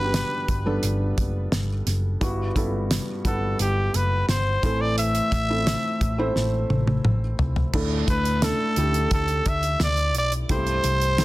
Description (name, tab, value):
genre	piano-driven pop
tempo	87 BPM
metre	4/4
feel	straight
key	unclear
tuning	A4 = 441 Hz
part	growling trumpet	melody	0.0-11.2 s	G4 to E5	-25 LUFS	equal	none
part	felt-muted upright piano	accompaniment	0.0-11.2 s	G2 to F#5	-28 LUFS	equal	none
part	hollow-body short-scale picked electric bass	bass	0.0-11.2 s	F#1 to D2	-25 LUFS	equal	none
part	damped 70s drum kit	drums	0.1-11.2 s	crash cymbal, hi-hat, kick drum, snare drum, toms	-25 LUFS	equal	none
room	light reverb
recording	dense, heavily limited modern master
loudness	-21 LUFS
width	side -18 dB against mid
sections	0.0-7.7 A section; 7.7-11.2 B section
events	drum fill 6.4-7.7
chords	0.0 G; 2.2 Emadd9/G; 4.6 Am; 7.7 Dsus2; 10.5 C6